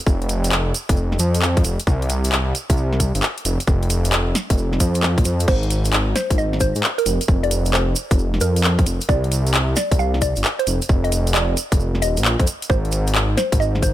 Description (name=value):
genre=UK garage, two-step garage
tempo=133 BPM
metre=4/4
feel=swing 66% on 16ths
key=unclear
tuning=A4 = 440 Hz
part: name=dark detuned saw bass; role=bass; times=0.1-13.9 s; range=Eb1 to Ab2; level=-20 LUFS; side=equal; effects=none
part: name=electronic kick drum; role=drums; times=0.1-13.9 s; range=none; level=-17 LUFS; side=equal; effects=none
part: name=tube shaker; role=percussion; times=0.1-13.9 s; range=none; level=-30 LUFS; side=right 5 dB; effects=none
part: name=garage drum kit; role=drums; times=0.2-13.9 s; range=crash cymbal, handclaps, hi-hat, snare drum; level=-23 LUFS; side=left 1 dB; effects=none
part: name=mallet-like synth pluck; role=melody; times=5.5-13.9 s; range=Bb4 to F5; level=-25 LUFS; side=right 1 dB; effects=chorus, phaser, dub echo
room=little or no reverb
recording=none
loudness=-17 LUFS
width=side -13 dB against mid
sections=0.0-13.9 A section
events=none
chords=0.0 N.C.; 1.9 C5; 3.5 N.C.; 5.5 Ab; 7.1 N.C.; 9.1 C5; 10.7 Ebsus2; 12.7 Ab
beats=| 0.07 0.52 0.97 1.42 | 1.87 2.32 2.77 3.23 | 3.68 4.13 4.58 5.03 | 5.48 5.93 6.38 6.83 | 7.29 7.74 8.19 8.64 | 9.09 9.54 9.99 10.44 | 10.89 11.35 11.80 12.25 | 12.70 13.15 13.60